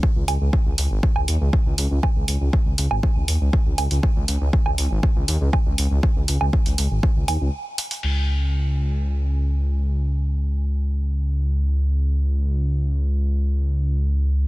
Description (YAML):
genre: melodic techno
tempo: 120 BPM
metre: 4/4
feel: straight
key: unclear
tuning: A4 = 441 Hz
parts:
  - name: electronic kick drum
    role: drums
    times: 0.0-7.1 s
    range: none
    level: -20 LUFS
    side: equal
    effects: none
  - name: dark detuned saw bass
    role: bass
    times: 0.2-14.5 s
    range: G#1 to D#2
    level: -20 LUFS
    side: equal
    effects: sidechain pumping
  - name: punchy analog drum machine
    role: drums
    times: 0.3-8.1 s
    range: crash cymbal, hi-hat, woodblock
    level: -28 LUFS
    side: right 3 dB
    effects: low-pass filter on hats, low-pass filter on perc, low-pass filter on cymbals, low-pass filter on room
room: little or no reverb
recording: dense, heavily limited modern master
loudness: -19 LUFS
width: side -19 dB against mid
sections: 0.0-8.0 A section; 8.0-14.5 B section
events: break 7.5-8.0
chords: none